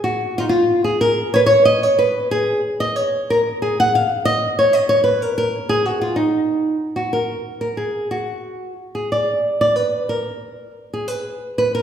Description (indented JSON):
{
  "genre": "musette",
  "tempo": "184 BPM",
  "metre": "3/4",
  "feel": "straight",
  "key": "unclear",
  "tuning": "A4 = 440 Hz",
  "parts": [
    { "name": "flamenco guitar", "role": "solo", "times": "0.0-11.8 s", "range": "Eb4 to Gb5", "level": "-16 LUFS", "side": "equal", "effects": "none" }
  ],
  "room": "wet recital hall reverb, RT60 1.7 s",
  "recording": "recorded in a church or concert hall",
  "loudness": "-16 LUFS",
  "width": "side -9 dB against mid",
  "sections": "0.0-7.1 A section; 7.1-11.8 B section",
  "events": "none",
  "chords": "none"
}